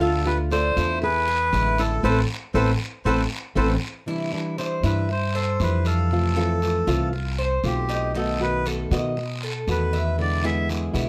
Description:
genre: latin, Cuban son and guajira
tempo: 118 BPM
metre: 4/4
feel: straight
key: unclear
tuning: A4 = 440 Hz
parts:
  - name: melodica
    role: melody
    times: 0.0-10.7 s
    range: G4 to E5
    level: -28 LUFS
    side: equal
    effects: none
  - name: flamenco guitar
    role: second line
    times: 0.0-3.7 s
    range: C4 to A4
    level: -30 LUFS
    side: equal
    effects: none
  - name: flamenco guitar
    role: accompaniment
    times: 0.0-11.1 s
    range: B2 to F#4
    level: -30 LUFS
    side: equal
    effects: none
  - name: Cuban tres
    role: arpeggios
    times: 0.0-11.1 s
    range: D#4 to F5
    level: -32 LUFS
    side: equal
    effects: none
  - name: upright bass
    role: bass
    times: 0.0-11.1 s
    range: A1 to B2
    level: -27 LUFS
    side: equal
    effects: none
  - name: guiro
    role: percussion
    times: 0.0-11.1 s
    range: none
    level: -39 LUFS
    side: equal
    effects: none
room: light reverb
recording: close, detailed microphones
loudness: -23 LUFS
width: mono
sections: 0.0-4.1 A section; 4.1-11.1 B section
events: band accent 2.0-4.1; melodica solo 4.1-11.1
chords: 0.0 Dm; 1.0 E7; 2.0 Amadd9; 4.1 Cadd9; 6.1 Fmaj7; 8.2 B7; 10.2 E7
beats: | 0.01 0.52 1.02 1.53 | 2.04 2.55 3.06 3.57 | 4.08 4.59 5.10 5.61 | 6.12 6.62 7.13 7.64 | 8.15 8.66 9.17 9.68 | 10.19 10.69

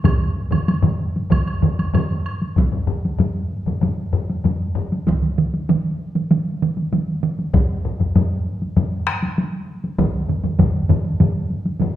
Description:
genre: japanese traditional, taiko drum ensemble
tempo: 97 BPM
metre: 4/4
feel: straight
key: none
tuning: none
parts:
  - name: solo taiko drums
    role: percussion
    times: 0.0-11.9 s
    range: none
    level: -23 LUFS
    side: left 1 dB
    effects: none
  - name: solo taiko drums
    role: percussion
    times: 0.0-11.9 s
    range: none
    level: -22 LUFS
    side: right 5 dB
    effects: none
  - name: taiko ensemble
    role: percussion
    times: 0.0-12.0 s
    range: none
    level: -21 LUFS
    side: left 3 dB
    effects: none
  - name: taiko ensemble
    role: percussion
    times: 0.1-10.7 s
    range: none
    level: -24 LUFS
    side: right 1 dB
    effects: none
  - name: woodblock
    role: percussion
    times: 0.1-2.4 s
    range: none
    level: -34 LUFS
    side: right 3 dB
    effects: none
room: wet recital hall reverb, RT60 1.5 s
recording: recorded in a church or concert hall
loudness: -18 LUFS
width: side -12 dB against mid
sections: 0.0-2.6 A section; 2.6-12.0 B section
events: speeding up 0.0-12.0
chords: none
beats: | 0.05 0.68 1.31 1.94 | 2.57 3.20 3.82 4.45 | 5.07 5.69 6.31 6.93 | 7.54 8.16 8.77 9.38 | 9.99 10.60 11.20 11.81

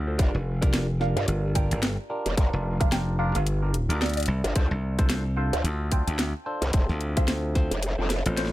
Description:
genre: glitch hop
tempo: 110 BPM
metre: 4/4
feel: swing 58% on 16ths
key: G minor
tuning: A4 = 441 Hz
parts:
  - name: woody wave-folded pluck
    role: melody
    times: 0.0-8.5 s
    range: C5 to G5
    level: -35 LUFS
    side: right 3 dB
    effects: analog chorus, tape echo
  - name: slap bass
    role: bass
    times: 0.0-8.5 s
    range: F1 to D2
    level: -26 LUFS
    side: equal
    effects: none
  - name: overdriven tine electric piano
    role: stabs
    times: 0.1-8.5 s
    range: C4 to C5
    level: -33 LUFS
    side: equal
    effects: phaser, sidechain pumping, tape echo
  - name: growl bass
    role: bass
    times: 0.2-8.2 s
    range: F1 to G2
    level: -27 LUFS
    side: equal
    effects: chorus
  - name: drum and bass drum kit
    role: drums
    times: 0.2-8.5 s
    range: hi-hat, snare drum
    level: -30 LUFS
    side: left 1 dB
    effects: overdrive
  - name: electronic kick drum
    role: drums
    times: 0.2-7.7 s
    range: none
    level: -23 LUFS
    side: equal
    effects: overdrive
room: little or no reverb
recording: none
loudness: -23 LUFS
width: side -16 dB against mid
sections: 0.0-8.5 A section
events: drum fill 8.4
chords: 0.2 Gm7; 4.6 Dm7; 6.7 F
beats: | 0.19 0.74 1.28 1.83 | 2.37 2.92 3.46 4.01 | 4.55 5.10 5.65 6.19 | 6.74 7.28 7.83 8.37

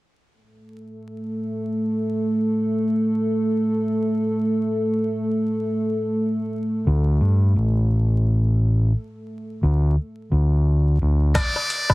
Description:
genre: trip hop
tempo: 87 BPM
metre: 4/4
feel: swing 59% on 16ths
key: unclear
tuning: A4 = 440 Hz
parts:
  - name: dark analog pad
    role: sustained chords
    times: 0.9-11.4 s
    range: A3 to A4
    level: -23 LUFS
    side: equal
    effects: chorus
  - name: overdriven fingered electric bass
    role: bass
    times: 6.9-11.3 s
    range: A1 to G2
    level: -17 LUFS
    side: equal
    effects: tube saturation
  - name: trip hop sampler-style drum kit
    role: drums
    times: 11.3-11.9 s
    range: crash cymbal, hi-hat, kick drum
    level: -22 LUFS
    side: equal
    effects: none
  - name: darbuka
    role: percussion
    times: 11.3-11.9 s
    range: none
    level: -25 LUFS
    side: left 2 dB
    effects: none
  - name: trumpet with metal mute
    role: melody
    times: 11.4-11.9 s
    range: D5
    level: -23 LUFS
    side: equal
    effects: none
room: light reverb, digital ambience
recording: heavily compressed radio sound, vinyl crackle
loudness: -19 LUFS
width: side -20 dB against mid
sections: 0.3-11.4 A section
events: none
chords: none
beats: | 0.32 1.01 1.70 2.39 | 3.08 3.77 4.46 5.14 | 5.83 6.52 7.21 7.90 | 8.59 9.28 9.97 10.66 | 11.35

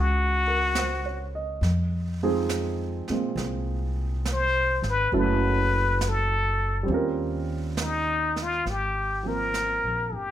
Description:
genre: jazz ballad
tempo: 69 BPM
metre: 4/4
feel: swing 68% on 8ths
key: unclear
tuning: A4 = 440 Hz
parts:
  - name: trumpet with plunger mute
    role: melody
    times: 0.0-10.3 s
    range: Eb4 to C5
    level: -25 LUFS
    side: left 2 dB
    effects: none
  - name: warm concert grand piano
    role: accompaniment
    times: 0.0-10.3 s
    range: Bb2 to Eb5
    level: -30 LUFS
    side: right 4 dB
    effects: none
  - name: upright bass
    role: bass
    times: 0.0-10.3 s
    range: Gb1 to F2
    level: -28 LUFS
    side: equal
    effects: none
  - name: jazz brush drum kit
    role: drums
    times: 0.8-10.3 s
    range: brushed snare drum, hi-hat, snare drum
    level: -36 LUFS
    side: right 4 dB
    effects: none
room: light reverb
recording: minimal, uncompressed stereo recording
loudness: -23 LUFS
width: side -11 dB against mid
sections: 0.0-8.6 A section; 8.6-10.3 B section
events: muted trumpet solo 0.0-8.6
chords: 0.0 Gb13; 1.6 Fm7; 5.1 Gbm7; 6.9 Eb13; 8.6 Abmaj13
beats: 0.76 | 1.63 2.50 3.37 4.24 | 5.12 5.99 6.87 7.75 | 8.64 9.52

